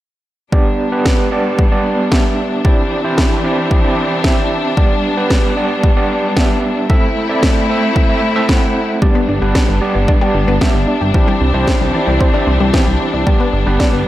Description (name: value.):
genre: italo disco.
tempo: 113 BPM.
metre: 4/4.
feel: straight.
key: G major.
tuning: A4 = 440 Hz.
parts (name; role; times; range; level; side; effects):
clear symphonic string section; sustained chords; 0.5-14.1 s; E3 to E4; -18 LUFS; left 2 dB; none.
overdriven tine electric piano; stabs; 0.5-14.0 s; B3 to F#5; -18 LUFS; right 2 dB; fast tremolo, low-pass filter, tape echo.
electronic kick drum; drums; 0.5-13.9 s; none; -14 LUFS; equal; none.
electronic snare drum; drums; 1.1-13.9 s; none; -20 LUFS; equal; overdrive.
analog pluck; arpeggios; 9.0-14.0 s; E3 to G4; -20 LUFS; left 2 dB; chorus, tape echo.
chorused synth bass; bass; 9.3-14.0 s; G1 to C2; -16 LUFS; equal; none.
room: light reverb.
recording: none.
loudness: -12 LUFS.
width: side -14 dB against mid.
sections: 0.5-14.1 A section.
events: none.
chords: 0.5 G; 2.6 Cadd9; 4.8 G; 6.9 Am; 9.0 G; 11.1 Cadd9; 13.3 G.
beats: | 0.52 1.05 1.59 2.12 | 2.65 3.18 3.71 4.24 | 4.77 5.30 5.83 6.37 | 6.90 7.43 7.96 8.49 | 9.02 9.55 10.08 10.61 | 11.14 11.68 12.21 12.74 | 13.27 13.80.